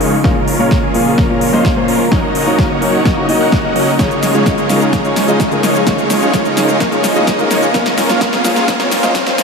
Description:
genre	EDM, festival progressive house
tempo	128 BPM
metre	4/4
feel	straight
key	Db major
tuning	A4 = 441 Hz
part	felt-muted upright piano	accompaniment	0.0-9.4 s	Bb2 to Eb5	-16 LUFS	left 1 dB	sidechain pumping, ping-pong delay
part	lush unison pad	sustained chords	0.0-9.4 s	Db3 to Bb4	-20 LUFS	equal	chorus, sidechain pumping
part	big supersaw lead	riff	0.0-9.4 s	Ab3 to Gb5	-16 LUFS	equal	sidechain pumping, low-pass filter, ping-pong delay
part	big-room dance drum kit	drums	0.0-9.4 s	hi-hat, shaker, snare drum	-19 LUFS	left 1 dB	overdrive
part	riser	sound effects	2.0-9.4 s	none	-24 LUFS	right 2 dB	none
part	electronic kick drum	drums	0.2-9.2 s	none	-18 LUFS	equal	overdrive
room	wet huge ambient reverb, RT60 8.2 s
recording	dreamy mix soaked in reverb, high-pass filter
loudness	-11 LUFS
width	side -4 dB against mid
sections	0.0-9.4 A section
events	build-up 0.0-9.4; drum fill 0.0-9.4; filter sweep on analog synth pad 0.0-9.4; filter sweep 0.0-9.4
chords	0.2 Bbm; 2.1 Gb6; 4.0 Dbadd9; 7.7 Bbm

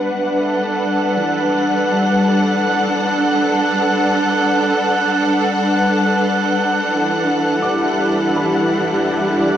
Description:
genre	ambient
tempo	free time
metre	none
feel	none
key	unclear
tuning	A4 = 440 Hz
part	rich studio string section	sustained chords	0.0-9.6 s	E3 to F#5	-15 LUFS	equal	low-pass filter, shimmer reverb
part	felt-muted upright piano	arpeggios	0.0-9.6 s	E3 to D6	-31 LUFS	left 1 dB	tape echo, shimmer reverb
part	wind-like tuned noise texture	texture	0.0-9.6 s	F#6	-23 LUFS	right 2 dB	built-in reverb, shimmer reverb
room	wet huge ambient reverb, RT60 7.6 s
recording	worn, warbling old tape, cassette tape, warbly pitch drift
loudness	-14 LUFS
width	side -10 dB against mid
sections	0.0-9.6 A section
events	fade-in on felt piano 0.0-9.6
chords	0.0 Em7

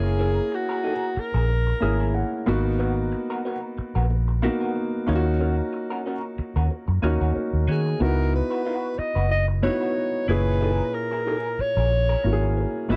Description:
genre	soul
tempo	92 BPM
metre	4/4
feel	swing 54% on 16ths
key	unclear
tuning	A4 = 440 Hz
part	breathy alto saxophone	melody	0.0-2.5, 7.7-13.0 s	E4 to D#5	-29 LUFS	equal	tape echo
part	warm grand piano	accompaniment	0.0-13.0 s	A#2 to F#5	-29 LUFS	equal	none
part	electric guitar through a small old amp	riff	0.0-13.0 s	B3 to C#5	-35 LUFS	equal	wah
part	vintage muted fingered electric bass	bass	0.0-13.0 s	F#1 to D#3	-25 LUFS	equal	none
room	small room ambience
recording	dry, close 1970s-style studio recording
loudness	-24 LUFS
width	mono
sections	0.0-13.0 A section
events	grand piano fill 1.8-2.8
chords	0.0 F#9; 2.5 G#m9; 5.1 D#m7; 8.0 C#m11; 10.3 F#9

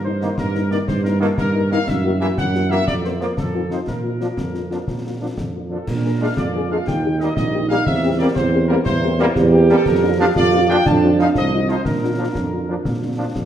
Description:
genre	military-style march for wind band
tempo	120 BPM (dotted quarters)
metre	6/8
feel	straight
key	Bb major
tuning	A4 = 445 Hz
part	dark trumpet section	melody	0.0-13.3 s	A4 to A5	-25 LUFS	left 1 dB	none
part	mellow tuba	bass	0.0-13.5 s	Bb1 to Bb2	-20 LUFS	right 2 dB	none
part	dark French horn section	accompaniment	0.1-13.3 s	Bb3 to Bb4	-25 LUFS	left 5 dB	none
part	clear trombone section	sustained chords	0.2-13.2 s	Eb3 to Eb4	-26 LUFS	equal	none
part	concert snare drum, concert bass drum and clash cymbals	drums	0.2-13.5 s	none	-26 LUFS	left 1 dB	none
part	mellow euphonium	second line	5.9-13.5 s	C4 to G4	-20 LUFS	right 3 dB	none
room	wet recital hall reverb, RT60 1.5 s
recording	none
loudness	-16 LUFS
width	side -10 dB against mid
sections	0.0-5.9 A section; 5.9-13.5 B section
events	none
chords	0.0 Eb/G; 1.9 Gb7; 2.9 Bb5/F; 3.4 F7; 3.9 Bb; 5.9 Bb7; 6.9 Eb; 7.9 C7/E; 9.9 Bb/F; 10.9 F7; 11.9 Bb

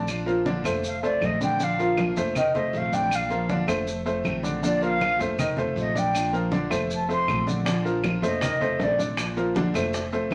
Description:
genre	latin, Cuban son and guajira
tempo	158 BPM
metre	4/4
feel	straight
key	Bb major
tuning	A4 = 440 Hz
part	reedy silver concert flute	melody	0.0-9.0 s	D5 to C6	-28 LUFS	equal	none
part	picked steel-string acoustic guitar	accompaniment	0.0-10.3 s	C3 to F4	-34 LUFS	equal	none
part	clear grand piano	arpeggios	0.0-10.3 s	D3 to Eb5	-29 LUFS	equal	none
part	upright bass	bass	0.0-10.3 s	F1 to Bb1	-35 LUFS	equal	none
part	claves	percussion	0.1-10.3 s	none	-36 LUFS	equal	none
part	congas	percussion	0.1-10.3 s	none	-37 LUFS	equal	none
part	maracas	percussion	0.1-10.3 s	none	-42 LUFS	equal	none
part	bongos	percussion	7.7-10.3 s	none	-35 LUFS	equal	none
room	moderate studio reverb, RT60 0.8 s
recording	none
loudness	-25 LUFS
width	mono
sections	0.0-10.3 A section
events	flute solo 0.0-10.3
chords	0.1 Bb; 0.8 F7; 1.6 Bb; 2.4 F7; 3.1 Bb; 3.9 F7; 4.6 Bb; 5.4 F7; 6.1 Bb; 6.9 F7; 7.7 Bb; 8.4 F7; 9.2 Bb

